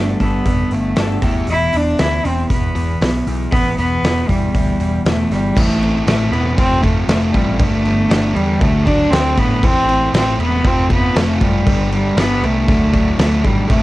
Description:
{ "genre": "quiet-loud alternative rock", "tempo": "118 BPM", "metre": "4/4", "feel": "straight", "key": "A minor", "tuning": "A4 = 440 Hz", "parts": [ { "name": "rich cello", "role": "melody", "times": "0.0-13.8 s", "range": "G3 to E4", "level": "-18 LUFS", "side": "equal", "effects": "none" }, { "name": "semi-hollow electric guitar", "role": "arpeggios", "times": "0.0-1.5 s", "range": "E2 to A4", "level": "-24 LUFS", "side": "equal", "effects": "analog chorus, cassette tape" }, { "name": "fuzz guitar", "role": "riff", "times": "0.0-13.8 s", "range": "G2 to F4", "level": "-22 LUFS", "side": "equal", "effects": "distortion, cassette tape" }, { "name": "overdriven picked electric bass", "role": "bass", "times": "0.0-13.8 s", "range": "E1 to A2", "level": "-20 LUFS", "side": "equal", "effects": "none" }, { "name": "oversized low-tuned drum kit", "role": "drums", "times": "0.2-13.8 s", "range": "crash cymbal, hi-hat, kick drum, snare drum", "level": "-18 LUFS", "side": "equal", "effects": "none" } ], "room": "little or no reverb", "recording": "home recording on cassette", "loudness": "-13 LUFS", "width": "side -17 dB against mid", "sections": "0.0-5.6 A section; 5.6-13.8 B section", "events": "none", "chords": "0.0 Gadd9; 1.2 Em; 5.6 Am; 6.6 F; 7.6 G; 8.6 D; 9.6 Am; 10.6 F; 11.7 G; 12.7 D" }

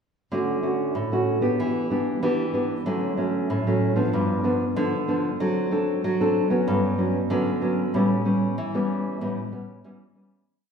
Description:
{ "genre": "samba", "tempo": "94 BPM", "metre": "4/4", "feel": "straight", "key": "D major", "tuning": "A4 = 440 Hz", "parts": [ { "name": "nylon-string guitar", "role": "solo", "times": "0.3-10.4 s", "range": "G2 to A4", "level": "-22 LUFS", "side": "equal", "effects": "none" } ], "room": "wet concert hall reverb, RT60 2.2 s", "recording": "heard from further back in the room", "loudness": "-22 LUFS", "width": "side -6 dB against mid", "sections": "0.3-10.5 groove", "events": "fade-out 7.9-10.5", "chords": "0.3 Dmaj7; 1.6 Em7; 2.9 Dmaj7; 4.1 G7; 5.4 D7/F#; 6.7 Gmaj7#11; 7.9 A9" }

